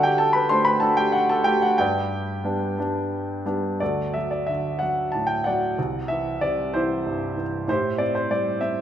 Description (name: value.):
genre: classical, lyrical solo piano.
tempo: 58-65 BPM (dotted quarters).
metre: 6/8.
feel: rubato.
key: unclear.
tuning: A4 = 440 Hz.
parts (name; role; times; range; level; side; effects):
warm concert grand piano; solo; 0.0-8.8 s; C2 to C6; -21 LUFS; equal; none.
room: moderate concert hall reverb, RT60 1.8 s.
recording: minimal, uncompressed stereo recording.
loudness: -21 LUFS.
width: side -10 dB against mid.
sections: 0.0-3.8 A section; 3.8-8.8 B section.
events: none.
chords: 0.0 D; 1.8 G; 3.8 D; 5.8 Cadd9; 7.7 Am7.